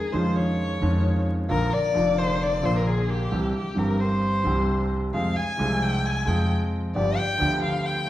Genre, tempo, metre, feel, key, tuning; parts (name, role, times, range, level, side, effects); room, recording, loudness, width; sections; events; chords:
tango; 132 BPM; 4/4; rubato; F minor; A4 = 440 Hz
warm violin; second line; 0.0-8.1 s; G4 to Ab5; -27 LUFS; left 3 dB
warm grand piano; accompaniment; 0.1-8.1 s; F1 to Ab4; -24 LUFS; right 1 dB
upright bass; bass; 0.1-8.1 s; F1 to F2; -29 LUFS; equal
wet recital hall reverb, RT60 1.5 s; recorded in a church or concert hall, vinyl crackle; -21 LUFS; side -14 dB against mid
0.0-8.1 A section
violin solo 0.0-8.1
0.0 Dbadd9/F; 1.5 Bb; 3.3 C; 5.1 Fm; 7.0 G7